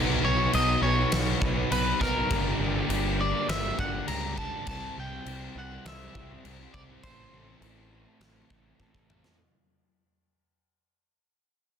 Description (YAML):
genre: quiet-loud alternative rock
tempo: 102 BPM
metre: 4/4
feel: straight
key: unclear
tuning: A4 = 440 Hz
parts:
  - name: crunchy overdriven guitar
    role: riff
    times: 0.0-9.4 s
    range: G2 to C5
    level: -33 LUFS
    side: equal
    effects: none
  - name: crunchy overdriven guitar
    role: riff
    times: 0.0-9.4 s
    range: G2 to C4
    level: -34 LUFS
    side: equal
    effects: none
  - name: fuzz picked electric bass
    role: bass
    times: 0.0-9.2 s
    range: G1 to C#2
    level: -31 LUFS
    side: equal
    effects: overdrive
  - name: electric guitar at the edge of break-up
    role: melody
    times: 0.2-9.1 s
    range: Bb4 to Bb5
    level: -31 LUFS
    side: equal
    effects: wide subtle chorus
  - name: huge arena drum kit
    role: drums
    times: 0.5-9.4 s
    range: crash cymbal, kick drum, snare drum, toms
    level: -32 LUFS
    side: equal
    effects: soft clipping on snare
room: light reverb, small room ambience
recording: dense, heavily limited modern master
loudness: -24 LUFS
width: side -8 dB against mid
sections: 0.0-9.4 A section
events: fade-out 0.0-9.4; drum fill 8.8-9.4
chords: 0.0 B; 2.3 Gm; 4.7 C; 7.0 Am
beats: 0.53 1.12 1.71 | 2.30 2.90 3.49 4.08 | 4.67 5.26 5.85 6.44 | 7.03 7.62 8.21 8.80